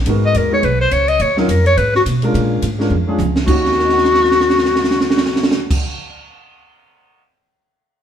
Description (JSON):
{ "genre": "jazz, small-group swing and bop", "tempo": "211 BPM", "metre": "4/4", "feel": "swing 59% on 8ths", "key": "Eb minor", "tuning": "A4 = 441 Hz", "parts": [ { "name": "upright bass", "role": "bass", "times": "0.0-5.7 s", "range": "Ab1 to Cb3", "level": "-19 LUFS", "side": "equal", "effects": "none" }, { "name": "warm baby grand piano", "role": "accompaniment", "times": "0.1-6.0 s", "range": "Eb2 to Bb6", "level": "-21 LUFS", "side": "equal", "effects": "none" }, { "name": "compact cocktail drum kit", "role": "drums", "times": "0.1-7.2 s", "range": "crash cymbal, hi-hat, kick drum, ride cymbal, snare drum, toms", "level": "-19 LUFS", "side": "right 2 dB", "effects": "none" }, { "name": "warm clarinet", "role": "melody", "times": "0.3-5.7 s", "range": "F4 to Eb5", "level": "-15 LUFS", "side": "left 2 dB", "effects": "none" } ], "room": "moderate stone room reverb, RT60 1.1 s", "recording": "band playing live in one room", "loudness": "-12 LUFS", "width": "side -9 dB against mid", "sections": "0.0-3.5 A section; 3.5-5.8 B section", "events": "drum fill 2.9-3.5, 3.6-5.7", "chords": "0.1 Abm9; 1.2 Ebm9; 1.8 Abmadd9; 2.3 Bb7#9; 3.5 Ebm7", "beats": "| 0.07 0.35 0.64 0.92 | 1.21 1.49 1.77 2.06 | 2.34 2.63 2.91 3.19 | 3.48 3.76 4.05 4.33 | 4.62 4.90 5.18 5.47" }